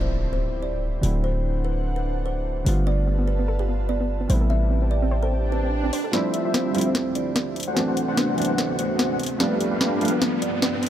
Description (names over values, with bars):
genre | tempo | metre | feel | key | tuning
future bass | 147 BPM | 4/4 | swing 55% on 16ths, half-time | D dorian | A4 = 440 Hz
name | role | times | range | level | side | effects
kalimba | melody | 0.0-10.9 s | B3 to E5 | -30 LUFS | equal | low-pass filter, tape echo
felt-muted upright piano | accompaniment | 0.0-10.9 s | C3 to F4 | -28 LUFS | right 2 dB | none
ethereal airy pad | sustained chords | 0.3-10.9 s | D2 to A5 | -35 LUFS | equal | ensemble chorus, built-in reverb
warm 808-style bass | bass | 0.0-5.9 s | D1 to A1 | -23 LUFS | equal | none
sub drop, swell and riser | sound effects | 0.0-1.2, 5.4-10.9 s | none | -32 LUFS | right 2 dB | none
trap drum kit | drums | 1.0-10.9 s | hi-hat, snare drum | -26 LUFS | equal | none
soft round pluck | arpeggios | 2.9-6.1 s | B3 to C5 | -32 LUFS | right 1 dB | chorus, dub echo
big bright polysynth | riff | 6.1-10.2 s | G3 to F#5 | -26 LUFS | equal | wide subtle chorus
room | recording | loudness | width
light reverb | none | -21 LUFS | side -11 dB against mid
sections
0.0-6.1 A section; 6.1-10.9 B section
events
impact 0.0-1.2; swell 5.4-6.1; build-up 6.1-10.9; drum fill 6.1-10.9; riser 6.1-10.9; filter sweep on analog polysynth 6.1-10.9; filter sweep on kalimba 6.1-10.9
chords
0.0 Dm11; 1.0 D7; 2.7 G9; 4.3 Am7; 6.1 Dm11; 7.6 D7; 9.2 G9